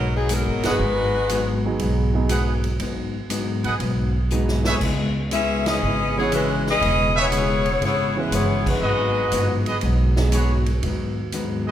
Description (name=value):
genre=jazz, big band swing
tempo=120 BPM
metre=4/4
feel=swing 68% on 8ths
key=G# minor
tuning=A4 = 439 Hz
part: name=edgy saxophone section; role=melody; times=0.0-1.7, 5.3-9.6 s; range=F#3 to E5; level=-22 LUFS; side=left 2 dB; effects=none
part: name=hollow-body jazz guitar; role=accompaniment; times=0.0-11.7 s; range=G#2 to E4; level=-26 LUFS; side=left 2 dB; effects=none
part: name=upright bass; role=bass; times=0.0-11.7 s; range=E1 to D#2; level=-24 LUFS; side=right 1 dB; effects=none
part: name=swinging big-band drum kit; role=drums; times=0.3-11.5 s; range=crash cymbal, hi-hat, kick drum, ride cymbal, snare drum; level=-30 LUFS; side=right 1 dB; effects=none
part: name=warm concert grand piano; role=accompaniment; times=0.6-10.3 s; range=E3 to G#4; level=-28 LUFS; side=right 3 dB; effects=none
part: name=clear trumpet section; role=stabs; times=0.6-11.7 s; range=F#4 to F#5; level=-27 LUFS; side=right 2 dB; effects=none
room=wet recital hall reverb, RT60 1.7 s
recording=recorded in a church or concert hall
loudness=-19 LUFS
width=side -11 dB against mid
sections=0.0-11.7 A section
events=band accent 0.6, 5.6, 8.6; drum fill 4.3-4.8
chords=0.0 G#m7; 4.8 C#m7; 8.8 G#m7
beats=0.30 | 0.80 1.31 1.81 2.31 | 2.81 3.31 3.81 4.31 | 4.82 5.32 5.82 6.32 | 6.82 7.32 7.82 8.32 | 8.82 9.32 9.82 10.32 | 10.82 11.33